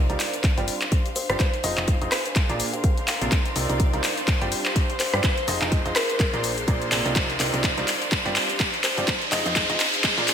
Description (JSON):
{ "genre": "piano house", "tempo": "125 BPM", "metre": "4/4", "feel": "swing 57% on 16ths", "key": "unclear", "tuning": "A4 = 439 Hz", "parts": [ { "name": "clear symphonic string section", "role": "sustained chords", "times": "0.0-10.3 s", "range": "C5 to C6", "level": "-35 LUFS", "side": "right 2 dB", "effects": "sidechain pumping, low-pass filter" }, { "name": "solid FM bass", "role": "bass", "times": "0.0-10.3 s", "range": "F1 to G2", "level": "-32 LUFS", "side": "equal", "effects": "sidechain pumping" }, { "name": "riser", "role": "sound effects", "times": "1.3-10.3 s", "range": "none", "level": "-31 LUFS", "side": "equal", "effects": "none" }, { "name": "warm symphonic string section", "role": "texture", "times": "0.0-10.3 s", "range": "D4 to F5", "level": "-34 LUFS", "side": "equal", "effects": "sidechain pumping" }, { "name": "clear baby grand piano", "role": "riff", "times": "0.1-10.3 s", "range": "Bb2 to Eb5", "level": "-29 LUFS", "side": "right 1 dB", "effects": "sidechain pumping, low-pass filter, digital delay" }, { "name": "house drum kit", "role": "drums", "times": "0.1-10.3 s", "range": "handclaps, hi-hat, rim click, shaker", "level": "-25 LUFS", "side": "left 1 dB", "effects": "high-pass filter on snare, small room ambience, high-pass filter on hats, high-pass filter on perc, gated reverb" }, { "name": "electronic kick drum", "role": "drums", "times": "0.4-10.1 s", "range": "none", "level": "-23 LUFS", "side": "equal", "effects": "small room ambience" }, { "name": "buzzing kalimba", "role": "melody", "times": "1.2-9.5 s", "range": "Bb4 to F5", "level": "-32 LUFS", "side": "left 2 dB", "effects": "low-pass filter, digital delay" } ], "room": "moderate lush hall reverb, RT60 1.7 s, studio reverb", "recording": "bright 1980s-style digital production, high-pass filter", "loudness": "-20 LUFS", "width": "side -8 dB against mid", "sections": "0.0-10.3 A section", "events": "build-up 0.0-10.3; drum fill 0.0-10.3; filter sweep on string section 0.0-10.3; filter sweep on kalimba 0.0-10.3; filter sweep 0.0-10.3; riser 1.3-10.3", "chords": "0.2 G7sus4; 1.4 Fm7; 2.1 Bb7; 3.3 Cm11; 4.0 G7sus4; 5.2 Fm7; 6.0 Bb7; 7.2 Cm11; 7.9 G7sus4; 9.1 Fm7; 9.8 Bb7", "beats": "0.44 0.92 | 1.40 1.88 2.36 2.84 | 3.32 3.80 4.28 4.76 | 5.24 5.72 6.20 6.68 | 7.16 7.64 8.12 8.60 | 9.08 9.56 10.04" }